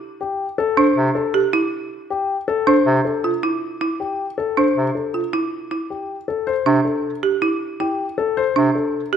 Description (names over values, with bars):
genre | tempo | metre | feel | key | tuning
classical, minimalist pattern music | 158 BPM | 5/4 | straight | D minor | A4 = 439 Hz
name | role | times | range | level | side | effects
dark grand piano | melody | 0.2-9.0 s | G4 to C5 | -21 LUFS | left 8 dB | none
folk marimba with hard mallets | arpeggios | 0.8-9.2 s | D4 to G4 | -19 LUFS | right 4 dB | none
bright bass clarinet | accompaniment | 1.0-8.7 s | C3 | -23 LUFS | right 1 dB | none
room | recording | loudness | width
moderate scoring stage reverb, RT60 1.5 s | none | -18 LUFS | side -8 dB against mid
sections
0.0-6.5 A section; 6.5-9.2 B section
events
none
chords
0.0 Am7; 2.7 Dmadd9; 6.5 Cadd9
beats
0.01 0.39 | 0.77 1.15 1.53 1.91 2.29 | 2.67 3.05 3.43 3.81 4.19 | 4.57 4.95 5.33 5.71 6.09 | 6.47 6.85 7.23 7.61 7.99 | 8.37 8.75 9.13